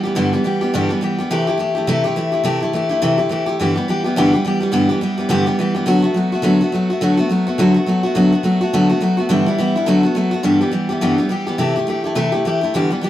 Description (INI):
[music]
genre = rock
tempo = 210 BPM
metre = 4/4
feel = swing 59% on 8ths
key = G major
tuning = A4 = 440 Hz
[part]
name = picked steel-string acoustic guitar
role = solo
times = 0.0-13.1 s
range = G2 to G4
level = -15 LUFS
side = equal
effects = none
[sound]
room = moderate studio reverb, RT60 0.5 s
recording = band playing live in one room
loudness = -15 LUFS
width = side -12 dB against mid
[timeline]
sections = 0.0-10.4 A section; 10.4-13.1 B section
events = none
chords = 0.0 G6; 1.3 C6; 3.6 G6; 5.9 D6; 9.3 G6; 9.9 D6; 10.4 G6; 11.6 C6